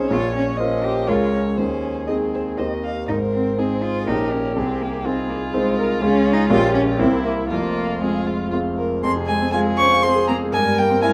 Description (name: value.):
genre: quick classical-period movement for piano quartet.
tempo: 121 BPM.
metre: 3/4.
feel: rubato.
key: Ab major, F minor from 6.0 s.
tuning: A4 = 440 Hz.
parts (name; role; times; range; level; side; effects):
warm violin; melody; 0.0-11.1 s; E4 to Db6; -26 LUFS; equal; none.
warm cello; second line; 0.0-11.1 s; G3 to G4; -27 LUFS; equal; none.
warm grand piano; accompaniment; 0.0-11.1 s; F1 to F5; -23 LUFS; equal; none.
dark violin; second line; 0.1-11.1 s; E4 to Eb5; -29 LUFS; equal; none.
room: moderate large studio reverb, RT60 0.9 s.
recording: none.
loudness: -20 LUFS.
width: mono.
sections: 0.0-9.0 A section; 9.0-11.1 B section.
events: none.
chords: 0.1 Bbm; 1.1 Bbm/Db; 1.6 Ab/Eb; 2.6 Eb; 3.1 Ab; 4.1 Eb7/Bb; 4.6 Ab/C; 6.0 Db; 6.5 Gm7b5/Bb; 7.0 C7; 7.5 Fm; 10.5 C7/G.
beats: | 0.11 0.59 1.08 | 1.58 2.08 2.58 | 3.08 3.58 4.08 | 4.57 5.06 5.54 | 6.02 6.50 7.00 | 7.50 8.02 8.53 | 9.04 9.54 10.04 | 10.53 11.03.